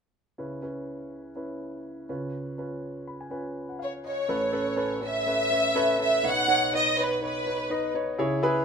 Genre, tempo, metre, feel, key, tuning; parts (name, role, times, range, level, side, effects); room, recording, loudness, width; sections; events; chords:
pop; 123 BPM; 4/4; swing 56% on 16ths; C# minor; A4 = 440 Hz
warm grand piano; accompaniment; 0.4-8.6 s; A1 to B5; -29 LUFS; equal
warm symphonic violin section; melody; 3.8-7.9 s; B4 to F#5; -24 LUFS; right 1 dB
moderate studio reverb, RT60 0.7 s; rough home demo mix; -25 LUFS; side -6 dB against mid
0.4-4.3 A section; 4.3-8.6 B section
grand piano fill 2.8-4.3
0.4 C#m7; 2.1 C#7; 4.3 Aadd9; 6.2 Badd9